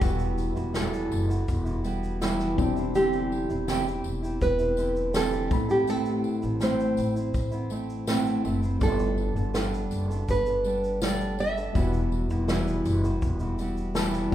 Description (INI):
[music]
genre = acoustic pop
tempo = 82 BPM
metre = 4/4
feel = straight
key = unclear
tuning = A4 = 436 Hz
[part]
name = nylon-string guitar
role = melody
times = 0.0-13.6 s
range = F#4 to E5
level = -28 LUFS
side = right 2 dB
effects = none
[part]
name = felt-muted upright piano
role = accompaniment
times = 0.0-14.3 s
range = G3 to B5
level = -37 LUFS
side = left 7 dB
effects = none
[part]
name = fingerpicked steel-string acoustic guitar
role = accompaniment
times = 0.0-14.3 s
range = E2 to A4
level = -29 LUFS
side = right 1 dB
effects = none
[part]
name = upright bass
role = bass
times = 0.0-14.3 s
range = E1 to A1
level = -29 LUFS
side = equal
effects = none
[part]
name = unplugged drum kit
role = drums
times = 0.0-14.3 s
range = kick drum, shaker, snare drum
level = -30 LUFS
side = equal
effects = none
[part]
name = tambourine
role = percussion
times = 0.0-14.1 s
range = none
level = -45 LUFS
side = left 8 dB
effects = none
[sound]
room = moderate recital hall reverb, RT60 1.5 s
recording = recorded in a church or concert hall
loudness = -24 LUFS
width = side -12 dB against mid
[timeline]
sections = 0.0-14.3 A section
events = felt piano fill 13.6-14.3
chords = 0.0 Emadd9; 2.6 Cadd9/E; 5.5 Amadd9; 8.8 Gadd9; 11.8 Emadd9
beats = | 0.01 0.74 1.48 2.21 | 2.95 3.68 4.41 5.15 | 5.88 6.61 7.35 8.08 | 8.82 9.55 10.29 11.02 | 11.76 12.49 13.23 13.96